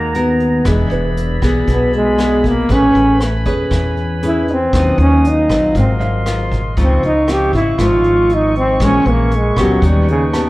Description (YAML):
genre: bossa nova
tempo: 118 BPM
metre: 4/4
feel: straight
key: G# minor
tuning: A4 = 440 Hz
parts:
  - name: breathy trombone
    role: melody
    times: 0.0-10.2 s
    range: C#3 to G4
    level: -15 LUFS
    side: equal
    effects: none
  - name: nylon-string guitar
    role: accompaniment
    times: 0.0-10.5 s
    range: G#2 to B4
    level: -19 LUFS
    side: left 1 dB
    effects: none
  - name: warm grand piano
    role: accompaniment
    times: 0.0-10.5 s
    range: G#4 to C#6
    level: -28 LUFS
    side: right 2 dB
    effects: none
  - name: warm woodwind section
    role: sustained chords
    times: 0.0-10.5 s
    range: B#3 to D#6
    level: -25 LUFS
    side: equal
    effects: none
  - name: upright bass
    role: bass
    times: 0.0-10.5 s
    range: E1 to E2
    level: -17 LUFS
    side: equal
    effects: none
  - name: vintage brush drum kit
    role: drums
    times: 0.1-10.5 s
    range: hi-hat, kick drum, rim click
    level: -22 LUFS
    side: equal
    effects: none
room: wet large studio reverb, RT60 1.4 s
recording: heard from further back in the room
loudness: -12 LUFS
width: side -19 dB against mid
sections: 0.0-10.5 A section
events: trombone solo 0.0-10.5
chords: 0.0 G#m9; 0.7 E7; 2.7 Amaj9; 4.7 D#m9; 5.8 G#13; 6.8 C#maj9; 8.8 A#m7b5; 9.8 D#aug7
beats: 0.14 | 0.65 1.16 1.67 2.18 | 2.69 3.20 3.71 4.22 | 4.73 5.24 5.75 6.26 | 6.77 7.28 7.79 8.30 | 8.81 9.32 9.83 10.34